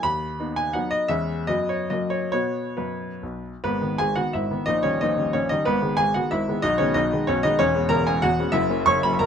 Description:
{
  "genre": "classical, romantic triple-time dance for piano with dotted rhythms",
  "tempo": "128-205 BPM",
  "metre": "3/4",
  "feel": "rubato",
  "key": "B major, G# minor from 3.6 s",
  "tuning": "A4 = 435 Hz",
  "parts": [
    { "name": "warm grand piano", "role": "solo", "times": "0.0-9.3 s", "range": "E1 to C#6", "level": "-21 LUFS", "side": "equal", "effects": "none" }
  ],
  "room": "light reverb",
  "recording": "close, detailed microphones",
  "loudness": "-21 LUFS",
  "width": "side -7 dB against mid",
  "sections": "0.0-3.6 A section; 3.6-9.3 B section",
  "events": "none",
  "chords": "0.0 B/D#; 1.1 C#m7/E; 1.5 B/F#; 1.9 F#; 2.3 B5; 3.6 G#m; 4.7 D#7/A#; 5.7 G#m; 6.7 G#m/B; 7.6 C#m7/E; 8.5 F#7"
}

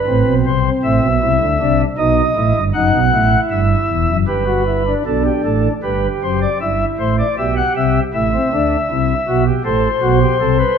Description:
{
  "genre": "classical, baroque-style 4-part fugue for pipe organ",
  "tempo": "78 BPM",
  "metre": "4/4",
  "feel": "straight",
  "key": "A minor",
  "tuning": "A4 = 442 Hz",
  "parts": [
    { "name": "pipe organ, flutes", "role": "solo", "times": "0.0-10.8 s", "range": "E1 to F#5", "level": "-13 LUFS", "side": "equal", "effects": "none" }
  ],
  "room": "wet recital hall reverb, RT60 1.4 s",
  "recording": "none",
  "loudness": "-13 LUFS",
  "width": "side -7 dB against mid",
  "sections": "0.0-5.0 A section; 5.0-10.8 B section",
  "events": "none",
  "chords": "0.4 Am; 2.0 B; 3.5 Em; 5.0 G; 6.6 Em/G; 8.1 Am; 9.6 F#dim/A"
}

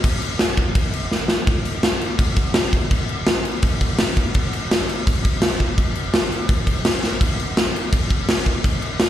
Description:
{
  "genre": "punk",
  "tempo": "167 BPM",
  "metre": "4/4",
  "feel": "straight",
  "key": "none",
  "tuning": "none",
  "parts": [
    { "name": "big rock drum kit", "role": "drums", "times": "0.0-9.1 s", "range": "crash cymbal, kick drum, snare drum", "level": "-17 LUFS", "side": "equal", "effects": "none" }
  ],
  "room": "light reverb",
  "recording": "live gig heard through the venue's PA, recital hall reverb",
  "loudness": "-18 LUFS",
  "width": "side -11 dB against mid",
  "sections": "0.0-1.5 A section; 1.5-9.1 B section",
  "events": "drum fill 1.1-1.5, 7.0",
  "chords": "none"
}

